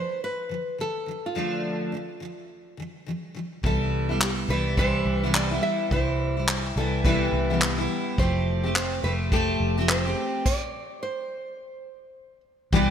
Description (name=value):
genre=acoustic pop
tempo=106 BPM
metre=4/4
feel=swing 60% on 16ths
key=C major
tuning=A4 = 441 Hz
part: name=nylon-string guitar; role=melody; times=0.0-12.4 s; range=F4 to E5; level=-31 LUFS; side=right 1 dB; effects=none
part: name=picked steel-string acoustic guitar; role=accompaniment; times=0.0-12.9 s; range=C3 to G4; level=-27 LUFS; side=left 1 dB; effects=double-tracked left and right
part: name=vintage muted fingered electric bass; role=bass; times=3.6-12.9 s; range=F1 to C2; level=-27 LUFS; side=equal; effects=none
part: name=vintage brush drum kit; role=drums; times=3.6-12.9 s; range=crash cymbal, handclaps, kick drum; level=-26 LUFS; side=equal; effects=gated reverb
room=moderate lush hall reverb, RT60 2.2 s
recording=bright 1980s-style digital production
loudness=-23 LUFS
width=side -8 dB against mid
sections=0.0-3.6 A section; 3.6-12.7 B section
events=stop 10.5-12.7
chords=0.0 Dm; 3.6 Cmaj7; 8.2 Fadd9